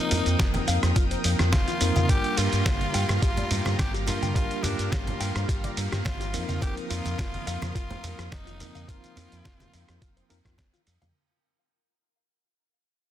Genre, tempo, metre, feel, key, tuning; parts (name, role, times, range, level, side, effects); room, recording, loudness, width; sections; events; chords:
nu-disco, nu disco; 106 BPM; 4/4; swing 53% on 16ths; A4 = 440 Hz
breathy tenor saxophone; melody; 0.0-10.6 s; D4 to G4; -34 LUFS; left 1 dB; dub echo
tine electric piano; accompaniment; 0.0-10.5 s; F3 to Bb4; -33 LUFS; right 1 dB; overdrive, fast stereo tremolo, sidechain pumping, dub echo
lush unison pad; sustained chords; 0.0-11.1 s; G4 to Eb6; -37 LUFS; left 1 dB; chorus, vintage 12-bit sampler grit, sidechain pumping
direct-recorded clean electric guitar; riff; 0.1-11.1 s; F4 to G5; -38 LUFS; left 6 dB; wide subtle chorus, dub echo
fingered electric bass with an envelope filter; bass; 0.1-11.1 s; F1 to G2; -28 LUFS; equal
dusty soul sampler-style drum kit; drums; 0.1-11.1 s; hi-hat, ride cymbal, rim click, shaker, snare drum; -31 LUFS; right 1 dB; soft clipping on snare
congas; percussion; 0.1-11.1 s; -34 LUFS; right 2 dB
electronic kick drum; drums; 0.4-10.7 s; -26 LUFS; equal
digital ambience; dense, heavily limited modern master; -23 LUFS; side -11 dB against mid
0.0-11.1 A section
drop 0.0-11.1; fade-out 2.1-11.1
0.0 F7sus4; 2.1 Gm7; 6.3 F7sus4